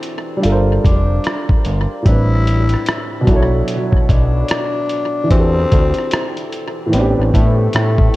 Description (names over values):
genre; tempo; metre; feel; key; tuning
lo-fi hip hop; 74 BPM; 4/4; swing 62% on 16ths; A dorian; A4 = 440 Hz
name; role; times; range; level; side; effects
warm upright piano; accompaniment; 0.0-8.2 s; A2 to C#5; -19 LUFS; right 1 dB; cassette tape, tape echo
dusty soul sampler-style drum kit; drums; 0.0-8.2 s; hi-hat, kick drum, rim click; -16 LUFS; equal; none
fat analog bass; bass; 0.5-8.1 s; F1 to A2; -15 LUFS; equal; none
growling tenor saxophone; melody; 0.9-8.2 s; A3 to E4; -23 LUFS; left 3 dB; tape echo
room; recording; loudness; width
light reverb, digital ambience; echo-heavy mix, cassette tape; -13 LUFS; side -18 dB against mid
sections
0.0-8.2 A section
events
none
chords
0.4 Gm11; 2.1 Am11; 3.3 Bm11; 5.3 Em11; 6.9 Am11